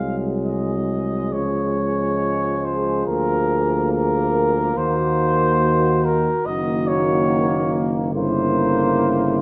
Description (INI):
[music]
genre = classical, hymn-like piece for brass band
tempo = 70 BPM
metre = 4/4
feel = rubato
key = unclear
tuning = A4 = 440 Hz
[part]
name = mellow flugelhorn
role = melody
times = 0.0-9.4 s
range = Bb4 to F5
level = -25 LUFS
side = equal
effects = none
[part]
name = mellow French horn section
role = second line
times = 0.0-9.4 s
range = E4 to Ab4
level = -28 LUFS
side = equal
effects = none
[part]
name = bright trombone section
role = accompaniment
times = 0.0-9.4 s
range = Ab3 to Bb3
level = -29 LUFS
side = equal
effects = none
[part]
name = clear trombone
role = accompaniment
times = 0.0-9.4 s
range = Db3 to Gb3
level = -29 LUFS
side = equal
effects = none
[part]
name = warm tuba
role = bass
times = 0.0-9.4 s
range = Gb1 to Eb2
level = -26 LUFS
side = equal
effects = none
[sound]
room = moderate recital hall reverb, RT60 1.8 s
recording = none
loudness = -20 LUFS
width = mono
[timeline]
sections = 0.0-9.4 A section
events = none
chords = 0.0 Ab7/C; 1.3 Db; 3.1 Bb7/D; 4.8 Ebm; 6.5 Ebm/Gb; 8.1 Gdim7